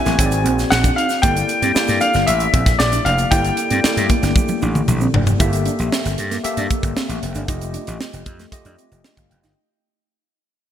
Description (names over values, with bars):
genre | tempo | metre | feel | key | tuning
polished 1980s jazz-funk pop | 115 BPM | 4/4 | straight | G dorian | A4 = 440 Hz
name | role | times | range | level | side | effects
clear grand piano | melody | 0.0-4.8 s | D5 to Ab5 | -19 LUFS | left 2 dB | none
tine electric piano | accompaniment | 0.0-9.7 s | Ab3 to G5 | -24 LUFS | left 2 dB | medium stereo tremolo, analog chorus
mellow electric guitar | riff | 0.1-9.5 s | A3 to E4 | -27 LUFS | right 4 dB | ensemble chorus
gritty slap bass | bass | 0.1-9.5 s | F1 to G2 | -21 LUFS | equal | overdrive
crisp fusion drum kit | drums | 0.1-9.6 s | hi-hat, kick drum, snare drum, toms | -20 LUFS | equal | none
tube shaker | percussion | 0.1-9.6 s | none | -34 LUFS | right 7 dB | none
room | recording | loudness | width
moderate lush hall reverb, RT60 1.9 s, small room ambience | bright 1980s-style digital production | -15 LUFS | side -10 dB against mid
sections
0.0-5.4 A section; 5.4-9.6 B section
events
drum fill 4.4-5.4; fade-out 5.4-9.6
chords
0.2 Ab7#11; 1.2 Gm69; 7.5 F9